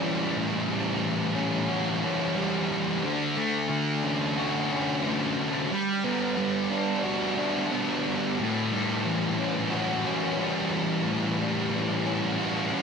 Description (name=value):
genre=rock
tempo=90 BPM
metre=4/4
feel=straight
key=A mixolydian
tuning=A4 = 441 Hz
part: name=thick fuzz guitar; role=solo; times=0.0-12.8 s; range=A2 to F#4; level=-25 LUFS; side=equal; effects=distortion, lush chorus, slapback echo
room=moderate lush hall reverb, RT60 2.9 s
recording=none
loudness=-25 LUFS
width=side -6 dB against mid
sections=0.0-12.8 A section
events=none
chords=0.0 A6; 3.0 Dmaj7; 5.7 Gmaj7; 8.4 A6